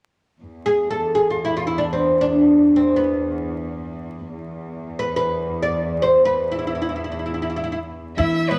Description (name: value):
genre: arabic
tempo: free time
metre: none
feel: none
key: E maqam hijaz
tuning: A4 = 440 Hz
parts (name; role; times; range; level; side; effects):
- warm studio cello section; drone; 0.4-8.2 s; E2; -32 LUFS; equal; none
- oud; melody; 0.7-8.6 s; B3 to D5; -21 LUFS; equal; none
- dark violin; second line; 8.2-8.6 s; B4 to E5; -26 LUFS; equal; none
- upright bass; bass; 8.2-8.6 s; E2; -26 LUFS; equal; none
room: wet large studio reverb, RT60 1.2 s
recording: vinyl crackle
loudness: -20 LUFS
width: mono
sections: 0.4-8.2 A section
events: none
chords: none